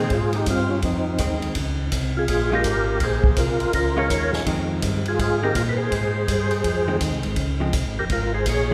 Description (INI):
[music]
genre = soul jazz organ trio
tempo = 165 BPM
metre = 4/4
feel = swing 63% on 8ths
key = F minor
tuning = A4 = 439 Hz
[part]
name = percussive tonewheel organ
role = melody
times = 0.0-8.7 s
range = C4 to Db5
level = -26 LUFS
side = equal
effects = slow rotary speaker, overdrive, chorus vibrato
[part]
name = hollow-body jazz guitar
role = accompaniment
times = 0.0-8.7 s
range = Eb3 to F4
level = -32 LUFS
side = equal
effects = none
[part]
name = tonewheel organ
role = bass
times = 0.0-8.7 s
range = F1 to Bb2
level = -27 LUFS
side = equal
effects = chorus vibrato, slow rotary speaker
[part]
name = vintage drum kit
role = drums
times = 0.1-8.6 s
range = hi-hat, kick drum, ride cymbal, snare drum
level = -29 LUFS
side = equal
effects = none
[sound]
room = moderate church reverb, RT60 2.8 s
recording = recorded in a church or concert hall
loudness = -22 LUFS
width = mono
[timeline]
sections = 0.0-8.7 A section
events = none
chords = 0.0 Fm7; 1.6 Bbm7; 4.5 Fm7; 7.4 Dbmaj7